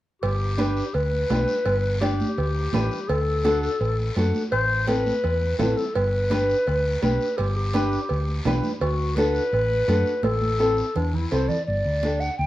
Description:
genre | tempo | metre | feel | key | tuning
latin, cumbia | 168 BPM | 4/4 | straight | G major | A4 = 440 Hz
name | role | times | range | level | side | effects
mellow clarinet | second line | 0.2-11.5 s | D4 to C5 | -25 LUFS | left 2 dB | none
hollow-body short-scale fingered electric bass | bass | 0.2-12.5 s | G1 to F#2 | -25 LUFS | equal | none
congas | percussion | 0.2-12.2 s | none | -30 LUFS | right 2 dB | none
cowbell and timbales | percussion | 0.2-11.5 s | none | -32 LUFS | right 4 dB | none
guiro | percussion | 0.2-12.5 s | none | -40 LUFS | left 3 dB | none
nylon-string guitar | accompaniment | 0.6-12.3 s | C4 to D5 | -25 LUFS | equal | none
hollow concert flute | melody | 11.3-12.5 s | C5 to G5 | -25 LUFS | right 1 dB | plate reverb
room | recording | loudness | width
moderate studio ambience, RT60 0.5 s | worn, warbling old tape, cassette tape, warbly pitch drift | -21 LUFS | side -15 dB against mid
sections
0.2-11.7 A section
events
drum fill 10.2-11.7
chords
0.2 G; 3.1 D; 4.5 Amadd9; 6.0 G; 8.8 D; 10.2 Am; 11.7 Gsus2

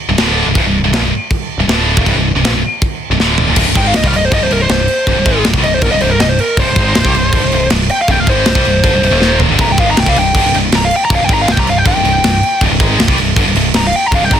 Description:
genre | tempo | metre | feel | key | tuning
heavy metal | 159 BPM | 4/4 | straight | C minor | A4 = 439 Hz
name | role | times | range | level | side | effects
heavy high-gain guitar | riff | 0.1-14.4 s | C2 to Ab3 | -14 LUFS | equal | distortion
growling picked electric bass | bass | 0.1-14.4 s | C1 to C2 | -17 LUFS | equal | overdrive
tight metal drum kit | drums | 0.2-14.4 s | crash cymbal, kick drum, snare drum, toms | -15 LUFS | right 1 dB | none
high-gain lead guitar | melody | 3.8-14.4 s | Bb4 to Bb5 | -14 LUFS | left 1 dB | distortion
room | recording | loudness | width
light reverb | dense, heavily limited modern master | -10 LUFS | side -9 dB against mid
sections
0.0-3.6 A section; 3.6-14.4 B section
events
drum fill 3.2-3.6, 9.2-9.6; lead electric guitar solo 3.6-14.4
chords
0.0 C5; 3.6 Cm; 9.1 Eb5; 9.5 Cm

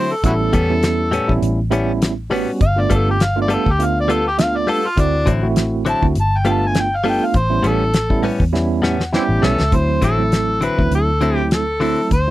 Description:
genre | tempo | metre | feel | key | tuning
straight-eighth soul blues | 101 BPM | 4/4 | swing 56% on 16ths | D mixolydian | A4 = 441 Hz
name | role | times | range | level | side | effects
overdriven harmonica | melody | 0.0-12.3 s | C4 to A5 | -20 LUFS | equal | none
tine electric piano | accompaniment | 0.0-12.3 s | F#3 to G5 | -21 LUFS | right 4 dB | medium stereo tremolo
direct-recorded clean electric guitar | stabs | 0.0-12.0 s | A2 to A4 | -20 LUFS | left 3 dB | none
vintage muted fingered electric bass | bass | 0.2-12.3 s | G1 to E2 | -20 LUFS | equal | none
damped 70s drum kit | drums | 0.2-12.3 s | hi-hat, kick drum, snare drum | -19 LUFS | equal | none
room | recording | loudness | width
little or no reverb | dry, close 1970s-style studio recording | -15 LUFS | side -16 dB against mid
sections
0.0-9.7 A section; 9.7-12.3 B section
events
harmonica solo 0.0-9.7; drum fill 8.5-9.7; tine electric piano fill 8.5-9.7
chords
0.2 A9; 2.6 G9; 5.0 D9; 6.2 G9; 7.3 A9; 9.7 D9

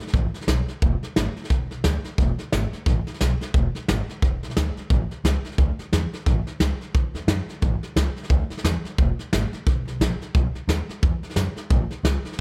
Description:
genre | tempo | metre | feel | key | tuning
rockabilly | 176 BPM | 4/4 | swing 59% on 8ths | E mixolydian | A4 = 441 Hz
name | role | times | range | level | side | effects
upright bass | bass | 0.0-12.4 s | E1 to F#2 | -27 LUFS | equal | none
soft brush drum kit | drums | 0.0-12.4 s | hi-hat, kick drum, snare drum | -26 LUFS | equal | none
room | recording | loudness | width
little or no reverb | none | -24 LUFS | mono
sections
0.0-12.4 A section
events
none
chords
none

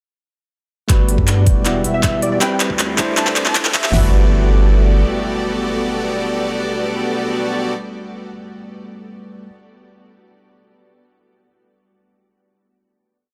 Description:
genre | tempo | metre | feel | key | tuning
future bass | 158 BPM | 4/4 | half-time | G major | A4 = 440 Hz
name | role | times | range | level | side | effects
bright tine electric piano | accompaniment | 0.9-9.5 s | G3 to F#5 | -27 LUFS | equal | vintage 12-bit sampler grit, sidechain pumping, digital delay
concert harp | arpeggios | 0.9-6.4 s | E4 to C5 | -35 LUFS | equal | none
big bright polysynth | riff | 0.9-7.7 s | B3 to E5 | -25 LUFS | equal | lush chorus, sidechain pumping
saturated sub bass | bass | 0.9-5.0 s | E1 to G2 | -19 LUFS | equal | sidechain pumping
big-room dance drum kit | drums | 0.9-3.9 s | handclaps, hi-hat | -22 LUFS | equal | none
pop drum kit | drums | 0.9-4.0 s | hi-hat, kick drum, snare drum, toms | -19 LUFS | equal | none
riser and impact | sound effects | 2.4-8.4 s | none | -29 LUFS | equal | none
plucky unison lead | melody | 1.9-4.0 s | D5 to A5 | -28 LUFS | equal | sidechain pumping, dub echo
room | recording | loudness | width
light reverb | high-pass filter | -17 LUFS | mono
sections
0.9-3.9 build; 3.9-7.0 final chord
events
build-up 0.9-3.9; drum fill 0.9-3.9; filter sweep on analog polysynth 0.9-3.9; filter sweep 0.9-3.9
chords
0.9 Gmaj9; 2.4 D13sus4; 3.0 C69; 3.9 Gmaj9

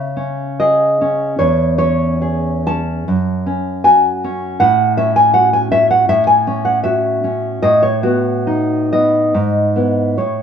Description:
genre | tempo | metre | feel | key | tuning
romantic piece for solo classical guitar | 64-82 BPM | 2/4 | rubato | E major from 6.1 s | A4 = 439 Hz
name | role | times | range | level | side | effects
nylon-string guitar | solo | 0.0-10.4 s | E2 to A5 | -12 LUFS | equal | none
room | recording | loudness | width
light reverb | band playing live in one room | -12 LUFS | side -8 dB against mid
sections
0.0-10.4 A section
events
none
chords
0.0 C#m; 1.4 C#m/E; 3.1 F#m; 4.6 F#m/A; 7.6 B7/A; 9.3 E/G#

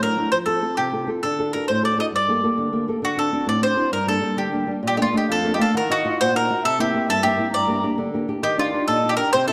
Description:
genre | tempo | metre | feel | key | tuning
italian folk, Italian serenade | 133 BPM (dotted quarters) | 6/8 | rubato | G harmonic minor | A4 = 440 Hz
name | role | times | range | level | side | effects
bowl-back mandolin | melody | 0.0-9.5 s | F4 to Eb5 | -24 LUFS | equal | none
flamenco guitar | accompaniment | 0.0-9.5 s | F2 to F5 | -26 LUFS | equal | none
dark erhu | second line | 4.9-9.5 s | D5 to Bb5 | -29 LUFS | equal | none
room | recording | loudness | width
moderate recital hall reverb, RT60 1.6 s | dark, warm production | -21 LUFS | mono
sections
0.0-4.8 A section; 4.8-9.5 B section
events
none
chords
0.3 F; 1.2 D; 2.1 Gmadd9; 3.0 D7; 3.9 Gm; 4.8 Bbmaj7; 5.8 Ebmadd9; 6.6 C7; 7.5 Gm; 8.4 Ebmaj7

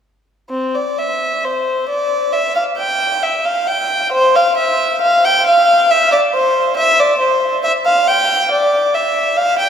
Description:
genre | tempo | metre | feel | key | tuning
classical, baroque-style suite movement for unaccompanied violin | 68 BPM | 4/4 | rubato | C major | A4 = 438 Hz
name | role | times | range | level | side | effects
warm violin | solo | 0.5-9.7 s | C4 to G5 | -12 LUFS | equal | none
room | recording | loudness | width
wet cathedral reverb, RT60 5.1 s | heard from further back in the room | -12 LUFS | side -8 dB against mid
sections
0.5-9.7 A section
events
none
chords
none

